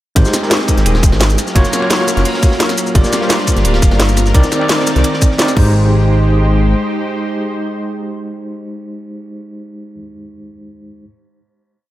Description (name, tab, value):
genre	liquid drum and bass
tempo	172 BPM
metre	4/4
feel	straight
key	Ab lydian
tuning	A4 = 440 Hz
part	overdriven tine electric piano	accompaniment	0.2-11.1 s	Ab3 to D5	-19 LUFS	equal	medium tremolo, tape echo
part	lush unison pad	sustained chords	0.2-9.3 s	Eb3 to F5	-21 LUFS	left 1 dB	chorus, sidechain pumping
part	smooth synth bass	bass	0.2-6.7 s	D1 to C2	-13 LUFS	equal	tube saturation
part	crunchy breakbeat drum kit	drums	0.2-5.5 s	hi-hat, ride cymbal, snare drum	-23 LUFS	equal	high-pass filter on cymbals, high-pass filter on hats, high-pass filter on snare, high-pass filter on room
part	electronic kick drum	drums	0.2-5.6 s	none	-12 LUFS	equal	none
part	garage drum kit	drums	0.2-5.6 s	crash cymbal, hi-hat, shaker, snare drum	-18 LUFS	equal	none
room	digital ambience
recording	none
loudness	-11 LUFS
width	side -14 dB against mid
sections	0.2-5.7 drop; 5.7-8.5 final hit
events	drop 0.2-5.7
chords	0.2 Abmaj7; 1.4 Gbmaj7; 3.0 Gm7; 4.3 Cm9; 5.6 Abmaj7